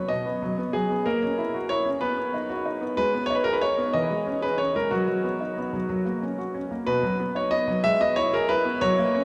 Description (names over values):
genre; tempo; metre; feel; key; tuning
classical-period piano sonatina; 62 BPM (dotted quarters); 6/8; straight; B major; A4 = 440 Hz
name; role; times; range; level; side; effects
clear grand piano; solo; 0.0-9.2 s; B2 to E5; -25 LUFS; equal; none
room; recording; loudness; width
wet cathedral reverb, RT60 7.5 s; in a vast, echoing space; -25 LUFS; mono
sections
0.0-9.2 A section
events
none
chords
0.0 B; 1.1 F#7/A#; 2.0 B; 3.0 G#m; 3.9 C#m/E; 4.9 B/F#; 5.9 F#; 6.9 B; 7.8 E/G#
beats
0.10 | 1.06 2.02 | 2.98 3.94 | 4.92 5.90 | 6.88 7.84 | 8.81